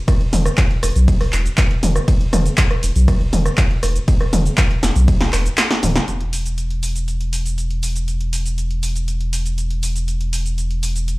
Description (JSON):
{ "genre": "acid house", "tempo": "120 BPM", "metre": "4/4", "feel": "straight", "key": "unclear", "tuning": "A4 = 442 Hz", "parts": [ { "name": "electronic kick drum", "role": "drums", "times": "0.1-5.2 s", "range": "none", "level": "-16 LUFS", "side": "equal", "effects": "none" }, { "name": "punchy analog drum machine", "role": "drums", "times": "0.1-11.2 s", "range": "cabasa, handclaps, hi-hat, ride cymbal, rim click, snare drum, toms", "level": "-21 LUFS", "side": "equal", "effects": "none" }, { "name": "saturated sub bass", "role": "bass", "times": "0.3-11.2 s", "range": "D1 to B1", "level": "-18 LUFS", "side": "equal", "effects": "sidechain pumping" } ], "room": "little or no reverb", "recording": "played on a big sound system in a bare room, large studio reverb", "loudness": "-16 LUFS", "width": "side -21 dB against mid", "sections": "0.0-6.1 A section; 6.1-11.2 B section", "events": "drop 0.0-6.1; kick drops out 5.6-6.1; drum fill 5.6-6.1", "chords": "none" }